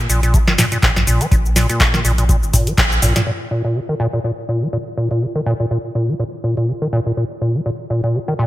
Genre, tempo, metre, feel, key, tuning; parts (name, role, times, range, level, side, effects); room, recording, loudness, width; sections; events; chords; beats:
acid house; 123 BPM; 4/4; swing 56% on 16ths; Bb minor; A4 = 440 Hz
warm sub bass; bass; 0.0-3.1 s; Ab1 to Bb2; -19 LUFS; equal; sidechain pumping
deep acid bass; riff; 0.1-8.5 s; Bb2 to F3; -18 LUFS; equal; tube saturation, sidechain pumping, ping-pong delay
booming analog drum machine; drums; 0.1-3.2 s; handclaps, hi-hat, shaker, snare drum, toms; -18 LUFS; equal
electronic kick drum; drums; 0.3-2.9 s; -16 LUFS; equal; overdrive
light reverb, digital ambience; -15 LUFS; side -15 dB against mid
0.0-3.3 A section; 3.3-8.5 B section
drop 0.0-3.3; band accent 2.8
0.34 0.83 | 1.31 1.80 2.29 2.78 | 3.27 3.75 4.24 4.73 | 5.22 5.71 6.19 6.68 | 7.17 7.66 8.14